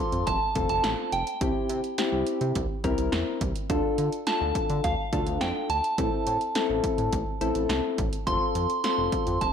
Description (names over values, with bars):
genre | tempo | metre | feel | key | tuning
synth-pop | 105 BPM | 4/4 | straight | D minor | A4 = 440 Hz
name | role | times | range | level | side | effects
soft synth bell | melody | 0.0-9.5 s | F5 to C6 | -29 LUFS | right 2 dB | chorus, analog delay
soft electric-piano-like synth keys | accompaniment | 0.0-9.4 s | C4 to Bb4 | -28 LUFS | left 4 dB | chorus
chorused synth bass | bass | 0.1-9.5 s | F1 to D3 | -30 LUFS | right 1 dB | none
punchy analog drum machine | drums | 0.1-9.5 s | hi-hat, kick drum, snare drum | -31 LUFS | right 1 dB | none
room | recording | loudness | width
wet plate reverb, RT60 1.2 s | dreamy mix soaked in reverb | -24 LUFS | side -7 dB against mid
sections
0.0-9.5 A section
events
none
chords
0.0 F; 1.4 C; 3.7 Dm; 6.0 Am; 8.3 F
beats
0.27 0.84 | 1.41 1.98 2.55 3.13 | 3.70 4.27 4.84 5.41 | 5.98 6.55 7.13 7.70 | 8.27 8.84 9.41